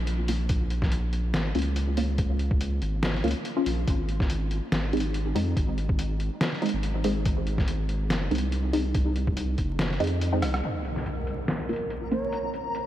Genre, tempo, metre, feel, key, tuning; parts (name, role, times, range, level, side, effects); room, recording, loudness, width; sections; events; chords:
deep dubstep; 142 BPM; 4/4; swing 54% on 16ths, half-time; Bb minor; A4 = 440 Hz
saturated sub bass; bass; 0.0-10.6 s; Gb1 to F2; -27 LUFS; equal
trip hop sampler-style drum kit; drums; 0.1-12.8 s; hi-hat, rim click, snare drum; -32 LUFS; equal; low-pass filter on hats, low-pass filter on snare
filtered dub chord stab; stabs; 0.3-12.2 s; Ab3 to F4; -31 LUFS; equal; phaser, analog chorus, dub echo
electronic kick drum; drums; 0.5-9.7 s; -26 LUFS; equal
impact; sound effects; 10.6-12.3 s; -34 LUFS; equal
backwards swelling texture; texture; 11.2-12.9 s; Bb4; -34 LUFS; left 1 dB; built-in reverb
breathy reedy low ney; melody; 12.1-12.4 s; Db5; -33 LUFS; right 4 dB; dub echo
moderate cathedral reverb, RT60 6.0 s; dreamy mix soaked in reverb, vinyl crackle; -24 LUFS; side -12 dB against mid
0.0-10.6 A section; 10.6-12.9 B section
kick drops out 10.2-10.6; drum fill 10.4; impact 10.6-12.3
0.0 Bbm; 3.9 Ab; 10.6 Bbm